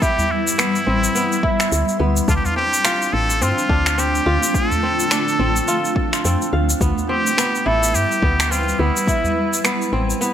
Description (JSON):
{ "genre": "organic downtempo", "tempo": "106 BPM", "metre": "4/4", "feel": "swing 58% on 16ths", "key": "unclear", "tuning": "A4 = 440 Hz", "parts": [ { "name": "trumpet with straight mute", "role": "melody", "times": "0.0-9.6 s", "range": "E4 to A4", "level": "-22 LUFS", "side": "equal", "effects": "tape echo" }, { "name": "granular cloud pad", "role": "sustained chords", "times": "0.0-10.3 s", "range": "G3 to C6", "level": "-24 LUFS", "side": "left 1 dB", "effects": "built-in reverb, sidechain pumping" }, { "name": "kora", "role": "arpeggios", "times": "0.0-10.3 s", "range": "B3 to F5", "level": "-23 LUFS", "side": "right 1 dB", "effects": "tape echo" }, { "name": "electronic kick drum", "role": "drums", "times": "0.0-9.2 s", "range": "none", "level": "-21 LUFS", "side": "equal", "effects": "overdrive" }, { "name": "electronic shaker and finger snaps", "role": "drums", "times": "0.0-10.3 s", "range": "none", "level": "-22 LUFS", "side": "left 1 dB", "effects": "overdrive" }, { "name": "udu", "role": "percussion", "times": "0.2-9.3 s", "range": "none", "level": "-27 LUFS", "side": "equal", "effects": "none" }, { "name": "woody FM bass", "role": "bass", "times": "0.9-10.1 s", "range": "A1 to G2", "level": "-20 LUFS", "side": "equal", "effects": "none" } ], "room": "light reverb, digital ambience", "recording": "none", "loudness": "-16 LUFS", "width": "side -10 dB against mid", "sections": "0.0-10.3 A section", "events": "none", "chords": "0.0 Cmaj7; 2.3 Dm7" }